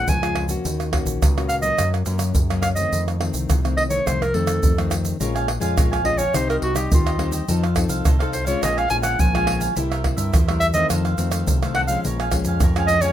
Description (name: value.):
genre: samba and choro.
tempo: 105 BPM.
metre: 4/4.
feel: straight.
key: Bb minor.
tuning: A4 = 441 Hz.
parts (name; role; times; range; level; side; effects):
clear clarinet; melody; 0.0-13.1 s; F4 to Ab5; -22 LUFS; right 1 dB; none.
nylon-string guitar; accompaniment; 0.0-13.1 s; F2 to A4; -26 LUFS; left 5 dB; none.
growling fingered electric bass; bass; 0.0-13.1 s; Bb1 to G2; -24 LUFS; equal; overdrive.
egg shaker, surdo, pandeiro and tamborim; percussion; 0.1-13.1 s; none; -22 LUFS; right 1 dB; none.
cavaquinho; accompaniment; 5.2-13.1 s; Eb4 to Ab5; -29 LUFS; right 4 dB; none.
room: light reverb.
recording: minimal, uncompressed stereo recording.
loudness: -18 LUFS.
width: side -11 dB against mid.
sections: 0.0-13.1 A section.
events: none.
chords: 0.0 Bbm7; 0.6 Ebm7; 1.8 Gb; 2.9 F7; 5.2 Bbm7; 6.3 Cm; 7.5 F7; 8.6 Bbm7; 9.8 C7; 10.9 F7; 12.0 Bbm7.